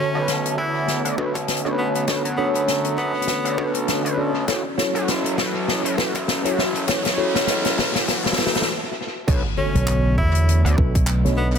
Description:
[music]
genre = glitch hop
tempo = 100 BPM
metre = 4/4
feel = swing 58% on 16ths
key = unclear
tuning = A4 = 440 Hz
[part]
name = bright tenor saxophone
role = melody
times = 0.0-3.8, 9.6-11.6 s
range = B3 to E4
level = -27 LUFS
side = equal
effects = tape echo
[part]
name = warm analog pad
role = sustained chords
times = 0.0-11.6 s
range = D3 to A4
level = -31 LUFS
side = equal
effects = chorus, sidechain pumping
[part]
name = mellow tine electric piano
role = stabs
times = 0.0-11.4 s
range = D3 to D5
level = -26 LUFS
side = equal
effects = fast stereo tremolo, sidechain pumping, low-pass filter, tape echo
[part]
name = riser and impact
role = sound effects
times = 2.5-11.6 s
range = none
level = -32 LUFS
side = equal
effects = none
[part]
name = ethereal airy pad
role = texture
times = 0.0-8.7 s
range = C#4 to A5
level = -30 LUFS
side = left 2 dB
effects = ensemble chorus, built-in reverb, phaser, sidechain pumping
[part]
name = gritty driven synth bass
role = bass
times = 0.2-10.8 s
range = F#1 to F#2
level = -26 LUFS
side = equal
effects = high-pass filter
[part]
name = open jazz drum kit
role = drums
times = 0.3-11.6 s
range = crash cymbal, handclaps, hi-hat, rim click, snare drum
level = -24 LUFS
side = left 3 dB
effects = tape echo
[part]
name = electronic kick drum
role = drums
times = 0.6-11.1 s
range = none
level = -22 LUFS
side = equal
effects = high-pass filter on kick, high-pass filter on room
[part]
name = slap bass with an envelope filter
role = bass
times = 9.7-11.6 s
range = B1 to E2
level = -18 LUFS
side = equal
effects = tube saturation
[sound]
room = moderate spring reverb, RT60 1.3 s, small room ambience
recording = echo-heavy mix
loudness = -18 LUFS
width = side -7 dB against mid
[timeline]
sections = 0.0-9.3 A section; 9.3-11.6 B section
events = build-up 0.0-9.3; drum fill 0.0-8.7; filter sweep on tine electric piano 0.0-9.3; filter sweep on analog synth pad 0.0-9.3; riser 2.5-8.7; stop 8.7-9.3; drop 9.3-11.6; impact 9.3-11.6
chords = 0.0 Bm9; 4.5 F#m7; 9.3 Bm9

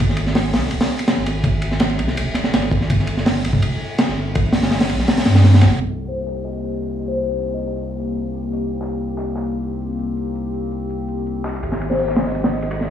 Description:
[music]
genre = drum and bass, jungle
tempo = 165 BPM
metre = 4/4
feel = straight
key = C minor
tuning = A4 = 440 Hz
[part]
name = saturated sub bass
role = bass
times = 0.0-12.9 s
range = Eb1 to G2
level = -21 LUFS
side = equal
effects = none
[part]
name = crunchy breakbeat drum kit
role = drums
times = 0.0-5.8, 11.6-12.9 s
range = hi-hat, kick drum, ride cymbal, snare drum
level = -18 LUFS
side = equal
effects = none
[part]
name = warbly tape-like pad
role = sustained chords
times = 6.0-12.9 s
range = Ab3 to G4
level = -26 LUFS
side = left 2 dB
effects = chorus, built-in reverb
[part]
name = dusty soul sampler-style drum kit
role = drums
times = 5.8-12.8 s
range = hi-hat, shaker, snare drum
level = -35 LUFS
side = left 2 dB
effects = high-pass filter on perc, high-pass filter on snare, high-pass filter on hats
[part]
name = downlifter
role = sound effects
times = 5.8-8.7 s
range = none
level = -45 LUFS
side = equal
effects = none
[part]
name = kalimba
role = melody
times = 6.1-7.8, 11.9-12.7 s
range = C5 to Eb5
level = -26 LUFS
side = left 4 dB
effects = dub echo
[sound]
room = light reverb, small room ambience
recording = played on a big sound system in a bare room, large studio reverb, vinyl crackle, low-pass filter, studio ambience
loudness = -17 LUFS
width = side -10 dB against mid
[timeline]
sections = 0.0-5.8 A section; 5.8-12.9 B section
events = none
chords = 0.0 Ab; 2.9 N.C.; 5.8 Cm7; 11.6 Abmaj7

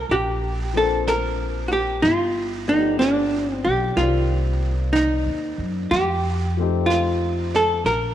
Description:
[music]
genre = jazz ballad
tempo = 62 BPM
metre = 4/4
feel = swing 69% on 8ths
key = unclear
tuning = A4 = 436 Hz
[part]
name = archtop guitar, miked and amplified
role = melody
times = 0.0-8.1 s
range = D4 to Bb4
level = -21 LUFS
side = equal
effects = none
[part]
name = warm upright piano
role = accompaniment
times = 0.0-7.9 s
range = Eb3 to D5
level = -29 LUFS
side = left 11 dB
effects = none
[part]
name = upright bass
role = bass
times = 0.0-8.1 s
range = G1 to Gb2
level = -25 LUFS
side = equal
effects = none
[part]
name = jazz brush drum kit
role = drums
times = 0.1-8.1 s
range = brushed snare drum, hi-hat, snare drum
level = -35 LUFS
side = right 6 dB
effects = none
[sound]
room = light reverb, studio reverb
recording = 1960s-style stereo with parts hard left and right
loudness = -19 LUFS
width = side -11 dB against mid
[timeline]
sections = 0.0-8.1 A section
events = none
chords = 0.1 Bbadd9; 2.0 G7; 4.0 Cm7; 5.9 F7

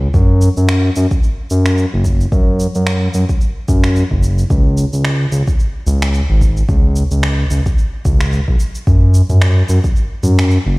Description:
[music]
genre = organic downtempo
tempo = 110 BPM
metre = 4/4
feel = swing 56% on 16ths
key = unclear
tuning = A4 = 440 Hz
[part]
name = smooth synth bass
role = bass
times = 0.0-10.8 s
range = F#1 to F#2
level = -12 LUFS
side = equal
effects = tube saturation, sidechain pumping
[part]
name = afro-pop drum kit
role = drums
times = 0.1-10.6 s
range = cabasa, finger snaps, toms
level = -23 LUFS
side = right 1 dB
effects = none
[part]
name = electronic kick drum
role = drums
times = 0.1-9.9 s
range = none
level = -14 LUFS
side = equal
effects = none
[sound]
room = little or no reverb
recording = played on a big sound system in a bare room, stone room reverb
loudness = -12 LUFS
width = side -24 dB against mid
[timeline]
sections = 0.0-10.8 A section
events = none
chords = none

